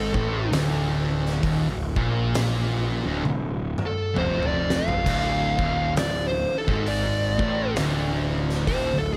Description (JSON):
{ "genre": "stoner and doom metal", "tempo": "66 BPM", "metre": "4/4", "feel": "swing 58% on 8ths", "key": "D phrygian", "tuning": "A4 = 439 Hz", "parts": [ { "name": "fuzz lead guitar", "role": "melody", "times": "0.0-9.2 s", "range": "G#4 to F5", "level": "-30 LUFS", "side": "equal", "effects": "distortion, tape echo" }, { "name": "fuzz guitar", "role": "riff", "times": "0.0-9.2 s", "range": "D2 to Bb2", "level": "-35 LUFS", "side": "equal", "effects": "distortion" }, { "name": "thick fuzz guitar", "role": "riff", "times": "0.0-9.2 s", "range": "D2 to Bb2", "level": "-30 LUFS", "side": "equal", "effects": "distortion" }, { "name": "thick fuzz guitar", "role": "riff", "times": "0.0-9.2 s", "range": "D2 to Bb2", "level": "-33 LUFS", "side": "equal", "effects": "distortion" }, { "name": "fuzz picked electric bass", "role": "bass", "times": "0.0-9.2 s", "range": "D1 to Bb1", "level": "-32 LUFS", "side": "equal", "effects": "overdrive" }, { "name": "oversized low-tuned drum kit", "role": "drums", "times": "0.1-8.9 s", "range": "crash cymbal, hi-hat, kick drum, snare drum, toms", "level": "-31 LUFS", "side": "equal", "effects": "none" } ], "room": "light reverb, small room ambience", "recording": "none", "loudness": "-24 LUFS", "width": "mono", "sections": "0.0-9.2 A section", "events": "lead electric guitar solo 0.0-9.2; drum fill 3.2-5.1", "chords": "0.0 Dm" }